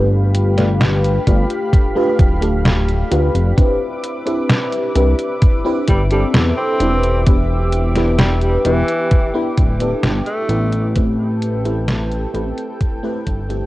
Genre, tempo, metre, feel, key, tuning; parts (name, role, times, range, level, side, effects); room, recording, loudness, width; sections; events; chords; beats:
vaporwave; 65 BPM; 4/4; straight; A minor; A4 = 440 Hz
FM electric piano with soft pad layer; accompaniment; 0.0-13.7 s; A3 to B4; -20 LUFS; equal; phaser, wide subtle chorus, analog delay
lush unison pad; sustained chords; 0.0-13.7 s; G4 to D6; -26 LUFS; equal; chorus
chorused synth bass; bass; 0.0-13.6 s; D1 to E2; -17 LUFS; equal
detuned 8-bit digital drum machine; drums; 0.3-13.7 s; hi-hat, snare drum; -19 LUFS; equal; overdrive
electronic kick drum; drums; 1.3-13.5 s; -14 LUFS; equal; overdrive
bright tenor saxophone; melody; 5.9-11.0 s; E3 to C4; -23 LUFS; equal; tape echo
light reverb; worn, warbling old tape, cassette tape, warbly pitch drift; -14 LUFS; side -17 dB against mid
0.0-13.7 A section
fade-out 8.5-13.7
0.0 G7; 3.6 Cmaj9; 7.3 Em7; 11.0 Am7
0.81 1.73 2.65 | 3.58 4.50 5.42 6.35 | 7.27 8.19 9.12 10.04 | 10.96 11.89 12.81